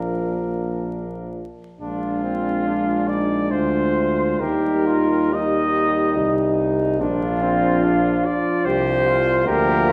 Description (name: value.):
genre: classical, hymn-like piece for brass band.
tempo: 71 BPM.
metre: 3/4.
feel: uneven beats, rubato.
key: Bb major.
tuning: A4 = 440 Hz.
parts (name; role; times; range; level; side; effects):
warm cornet; melody; 0.0-9.9 s; F4 to Eb5; -26 LUFS; equal; none.
warm flugelhorn; second line; 0.0-9.9 s; C4 to G4; -29 LUFS; equal; none.
warm euphonium; accompaniment; 0.0-9.9 s; Bb3 to Eb4; -27 LUFS; equal; none.
warm euphonium; accompaniment; 0.0-9.9 s; F3 to Ab3; -28 LUFS; equal; none.
clear tuba; bass; 0.0-9.9 s; Bb1 to Eb2; -28 LUFS; equal; none.
room: wet recital hall reverb, RT60 1.6 s.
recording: heard from further back in the room, vinyl crackle.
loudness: -20 LUFS.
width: mono.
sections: 0.0-1.8 A section; 1.8-9.9 B section.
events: none.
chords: 0.0 Bb; 1.8 Bb7; 4.4 Eb; 7.0 Bb.